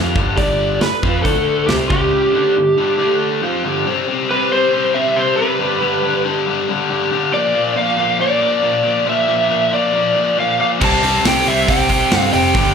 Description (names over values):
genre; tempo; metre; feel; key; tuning
hard rock; 138 BPM; 4/4; straight; unclear; A4 = 440 Hz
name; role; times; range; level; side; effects
biting overdriven guitar; riff; 0.0-12.7 s; G2 to F4; -18 LUFS; left 6 dB; slapback echo
overdriven semi-hollow guitar; riff; 0.0-3.9, 10.8-12.7 s; G2 to F4; -23 LUFS; right 12 dB; slapback echo
picked electric bass; bass; 0.0-2.1, 10.8-12.7 s; F1 to G2; -22 LUFS; equal; none
big rock drum kit; drums; 0.2-2.0, 10.8-12.6 s; crash cymbal, hi-hat, kick drum, snare drum; -20 LUFS; equal; none
lead guitar through a small cranked amp; melody; 0.4-12.7 s; G4 to A5; -17 LUFS; right 1 dB; overdrive, slapback echo
tight distorted guitar; riff; 10.8-12.7 s; G2 to C4; -20 LUFS; right 1 dB; distortion, slapback echo
room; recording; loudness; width
studio reverb; live gig heard through the venue's PA, club reverb; -14 LUFS; side -6 dB against mid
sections
0.0-3.9 A section; 3.9-12.7 B section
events
none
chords
0.0 G; 1.2 D5; 1.7 C5; 1.9 C#5; 2.3 G5; 3.0 D5; 3.4 G5; 3.9 C5; 5.6 G; 7.3 Bb; 10.8 C5